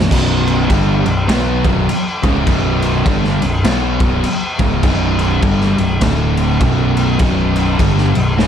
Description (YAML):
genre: stoner and doom metal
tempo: 102 BPM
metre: 4/4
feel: swing 60% on 8ths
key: B minor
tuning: A4 = 440 Hz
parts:
  - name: thick fuzz guitar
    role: riff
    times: 0.0-8.5 s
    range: B1 to B3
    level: -20 LUFS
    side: left 9 dB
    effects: distortion
  - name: thick fuzz guitar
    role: riff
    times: 0.0-8.5 s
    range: B1 to B3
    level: -20 LUFS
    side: right 9 dB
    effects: distortion
  - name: growling picked electric bass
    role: bass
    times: 0.0-8.5 s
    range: B0 to B1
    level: -19 LUFS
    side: equal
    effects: overdrive
  - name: raw garage drum kit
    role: drums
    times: 0.0-8.5 s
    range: crash cymbal, kick drum, snare drum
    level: -17 LUFS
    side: equal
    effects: none
  - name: distorted electric guitar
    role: riff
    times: 0.1-8.5 s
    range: B1 to B3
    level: -20 LUFS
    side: equal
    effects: distortion
room: light reverb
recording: none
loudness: -12 LUFS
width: side -8 dB against mid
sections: 0.1-8.5 A section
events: none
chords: 0.1 Bm; 6.0 D5; 6.6 Bm